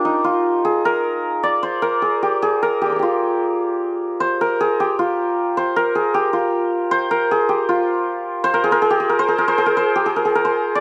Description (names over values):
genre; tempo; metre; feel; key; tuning
indian classical; 155 BPM; 3/4; straight; F raga bhimpalasi; A4 = 440 Hz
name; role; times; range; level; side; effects
santur; solo; 0.0-10.8 s; D4 to D5; -19 LUFS; equal; none
room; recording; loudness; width
light reverb; close, detailed microphones; -19 LUFS; mono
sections
0.0-7.7 A section; 7.7-10.8 B section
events
speeding up 0.0-10.8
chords
none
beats
0.24 | 0.64 1.03 1.43 | 1.83 2.22 2.62 | 3.01 3.40 3.79 | 4.18 4.57 4.96 | 5.35 5.74 6.13 | 6.51 6.90 7.29 | 7.67 8.05 8.44 | 8.82 9.20 9.58 | 9.96 10.34 10.72